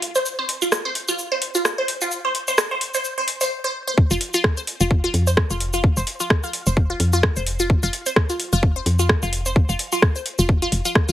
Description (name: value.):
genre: minimal techno.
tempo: 129 BPM.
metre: 4/4.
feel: swing 57% on 16ths.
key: unclear.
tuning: A4 = 440 Hz.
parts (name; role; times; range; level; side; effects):
booming analog drum machine; drums; 0.0-11.1 s; hi-hat, rim click, shaker; -22 LUFS; equal; none.
resonant blip pluck; riff; 0.2-11.1 s; F4 to C5; -23 LUFS; equal; phaser, sidechain pumping, dub echo.
electronic kick drum; drums; 4.0-11.1 s; none; -17 LUFS; equal; none.
woody FM bass; bass; 4.1-11.1 s; F1 to F2; -22 LUFS; equal; sidechain pumping.
room: moderate studio reverb, RT60 0.6 s.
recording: heavily compressed radio sound, multiband compression, high-pass filter.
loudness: -18 LUFS.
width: side -13 dB against mid.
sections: 0.0-4.0 A section; 4.0-11.1 B section.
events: build-up 0.0-4.0; break 3.5-4.0; drop 4.0-11.1.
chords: 0.0 F5.